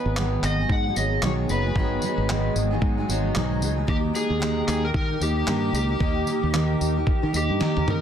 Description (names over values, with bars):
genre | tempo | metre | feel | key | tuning
acoustic pop | 113 BPM | 4/4 | swing 60% on 16ths | G# minor | A4 = 437 Hz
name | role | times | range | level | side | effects
overdriven slide guitar | melody | 0.0-8.0 s | G4 to F#5 | -28 LUFS | equal | plate reverb
picked steel-string acoustic guitar | accompaniment | 0.0-8.0 s | G#2 to A#4 | -26 LUFS | right 1 dB | double-tracked left and right
granular cloud pad | sustained chords | 0.8-8.0 s | A#2 to G5 | -35 LUFS | equal | built-in reverb
fingered electric bass | bass | 0.1-8.0 s | F#1 to D#3 | -26 LUFS | equal | none
dusty soul sampler-style drum kit | drums | 0.2-8.0 s | handclaps, kick drum, snare drum, tambourine, toms | -27 LUFS | equal | none
room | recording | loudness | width
light reverb | dense, heavily limited modern master | -21 LUFS | side -9 dB against mid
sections
0.0-8.0 A section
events
drum fill 7.6-8.0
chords
0.0 G#m7; 3.9 D#